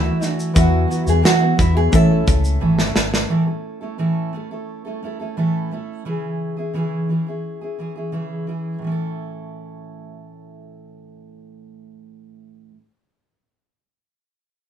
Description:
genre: acoustic pop.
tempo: 87 BPM.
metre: 4/4.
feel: straight.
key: A major.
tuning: A4 = 440 Hz.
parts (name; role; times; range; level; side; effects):
nylon-string guitar; melody; 0.0-3.0 s; E4 to A4; -22 LUFS; right 2 dB; none.
fingerpicked steel-string acoustic guitar; accompaniment; 0.0-12.8 s; A2 to A4; -23 LUFS; right 1 dB; none.
warm upright piano; accompaniment; 0.0-3.3 s; B3 to E5; -26 LUFS; left 2 dB; none.
vintage muted fingered electric bass; bass; 0.0-3.2 s; G#1 to E3; -18 LUFS; left 1 dB; none.
modern studio drum kit; drums; 0.2-3.3 s; kick drum, shaker, snare drum; -19 LUFS; equal; none.
room: wet studio reverb, RT60 0.5 s.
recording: band playing live in one room.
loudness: -17 LUFS.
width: side -9 dB against mid.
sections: 0.0-3.3 A section; 3.3-8.8 B section; 8.8-11.6 C section.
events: drum fill 2.6-3.3.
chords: 0.0 Dadd9; 0.6 Esus2; 1.9 A; 6.1 C#m; 8.8 A.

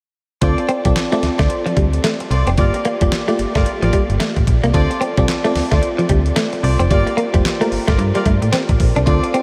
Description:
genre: R&B, new jack swing.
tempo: 111 BPM.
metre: 4/4.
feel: swing 60% on 16ths.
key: D minor.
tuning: A4 = 438 Hz.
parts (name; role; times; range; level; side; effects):
FM electric piano; accompaniment; 0.4-9.4 s; Bb3 to D5; -24 LUFS; equal; chorus.
warm horn section; stabs; 0.4-9.3 s; F4 to D5; -29 LUFS; equal; delay.
slap-like FM bass; bass; 0.4-9.2 s; F1 to A2; -20 LUFS; equal; none.
clean 12-bit digital drum machine; drums; 0.4-9.4 s; handclaps, hi-hat, kick drum, snare drum; -22 LUFS; equal; none.
direct-recorded clean electric guitar; riff; 0.6-9.4 s; F3 to D4; -24 LUFS; equal; lush chorus.
room: moderate huge ambient reverb, RT60 7.8 s.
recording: dreamy mix soaked in reverb.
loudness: -17 LUFS.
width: mono.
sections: 0.4-9.4 A section.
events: none.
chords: 0.4 Dm7; 2.6 Gm7; 4.7 Dm7; 6.9 Gm7.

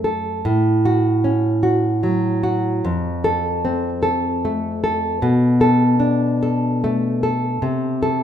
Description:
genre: romantic piece for solo classical guitar.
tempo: 75 BPM.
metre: 3/4.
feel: rubato.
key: unclear.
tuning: A4 = 440 Hz.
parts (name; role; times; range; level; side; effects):
nylon-string guitar; solo; 0.0-8.2 s; F2 to A4; -16 LUFS; equal; none.
room: wet recital hall reverb, RT60 1.5 s.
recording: minimal, uncompressed stereo recording.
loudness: -16 LUFS.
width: side -9 dB against mid.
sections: 0.0-8.2 A section.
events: none.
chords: 0.5 F#m/A; 2.8 F; 5.2 Bm7; 7.6 Am/C.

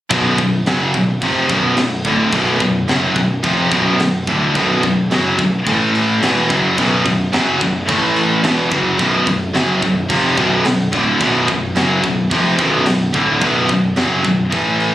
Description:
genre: heavy metal.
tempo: 108 BPM.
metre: 4/4.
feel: straight.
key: unclear.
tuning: A4 = 440 Hz.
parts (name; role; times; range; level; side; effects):
distorted electric guitar; riff; 0.1-14.9 s; B1 to A3; -19 LUFS; right 5 dB; overdrive.
high-gain distorted guitar; riff; 0.1-14.9 s; B1 to A3; -22 LUFS; right 1 dB; distortion.
scooped high-gain guitar; riff; 0.1-14.9 s; B1 to A3; -17 LUFS; left 3 dB; distortion.
fuzz picked electric bass; bass; 0.1-14.9 s; B0 to A1; -23 LUFS; equal; overdrive.
tight metal drum kit; drums; 0.1-14.9 s; crash cymbal, kick drum, snare drum; -23 LUFS; equal; none.
room: small room ambience.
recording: recorded on a phone in the room, studio reverb.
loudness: -13 LUFS.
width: side -13 dB against mid.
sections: 0.1-14.9 A section.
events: none.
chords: 0.1 Bm; 5.7 A5; 6.2 B5; 7.9 A5; 8.4 Bm.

